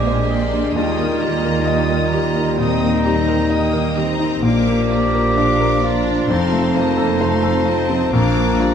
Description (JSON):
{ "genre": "classical, romantic movement for piano and orchestra", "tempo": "65 BPM", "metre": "4/4", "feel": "rubato", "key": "Eb major", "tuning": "A4 = 440 Hz", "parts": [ { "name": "warm grand piano", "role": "melody", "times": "0.0-8.7 s", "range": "Bb1 to Eb5", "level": "-20 LUFS", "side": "left 4 dB", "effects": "none" }, { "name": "warm symphonic violin section", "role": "melody", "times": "0.0-8.7 s", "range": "A5 to Eb6", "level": "-30 LUFS", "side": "left 3 dB", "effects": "none" }, { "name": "mellow hollow concert flute", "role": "second line", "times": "0.0-8.7 s", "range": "D5 to Bb5", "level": "-27 LUFS", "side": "left 3 dB", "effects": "none" }, { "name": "warm clarinet", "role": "second line", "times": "0.0-8.7 s", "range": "D4 to G4", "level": "-23 LUFS", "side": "left 1 dB", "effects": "none" }, { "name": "warm symphonic violin section", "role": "second line", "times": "0.0-8.7 s", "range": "A4 to Bb5", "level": "-29 LUFS", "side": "left 3 dB", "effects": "none" }, { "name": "mellow bassoon", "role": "accompaniment", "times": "0.0-8.7 s", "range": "F3 to Ab3", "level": "-26 LUFS", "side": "right 1 dB", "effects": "none" }, { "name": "rich symphonic viola section", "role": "accompaniment", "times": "0.0-8.7 s", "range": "G3 to D4", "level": "-25 LUFS", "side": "right 4 dB", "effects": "none" }, { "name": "warm French horn section", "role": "sustained chords", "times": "0.0-8.7 s", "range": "F3 to Eb4", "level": "-26 LUFS", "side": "left 5 dB", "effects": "none" }, { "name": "warm studio double bass section", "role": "bass", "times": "0.0-8.7 s", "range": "F1 to Eb2", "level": "-24 LUFS", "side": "right 4 dB", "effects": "none" }, { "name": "warm symphonic cello section", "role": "bass", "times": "0.0-8.7 s", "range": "F2 to Eb3", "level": "-25 LUFS", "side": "right 6 dB", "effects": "none" } ], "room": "moderate scoring stage reverb, RT60 2.1 s", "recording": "none", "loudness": "-15 LUFS", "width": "side -8 dB against mid", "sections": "0.0-8.7 A section", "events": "none", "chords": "0.0 Bb13; 0.8 Eb; 4.4 Bb; 6.3 F7; 8.1 Bb", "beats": "| 0.76 1.66 2.58 3.52 | 4.45 5.37 6.30 7.21 | 8.13" }